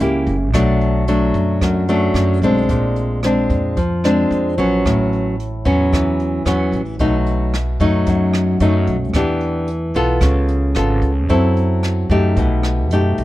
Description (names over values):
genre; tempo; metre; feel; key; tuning
bossa nova; 112 BPM; 4/4; straight; unclear; A4 = 438 Hz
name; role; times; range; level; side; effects
nylon-string guitar; accompaniment; 0.0-13.2 s; F#2 to A4; -16 LUFS; left 1 dB; none
upright bass; bass; 0.0-13.2 s; F#1 to F#2; -19 LUFS; equal; none
jazz brush drum kit; drums; 0.0-13.2 s; hi-hat, kick drum, rim click; -23 LUFS; equal; none
room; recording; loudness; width
little or no reverb; dark, warm production; -14 LUFS; side -16 dB against mid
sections
0.0-13.2 A section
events
none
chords
0.0 F#7b9; 0.5 Bm7; 2.7 A#9; 4.8 A69; 7.0 B7; 9.1 Em7; 10.2 C#7b13; 11.3 F#m7b5; 12.4 B7b13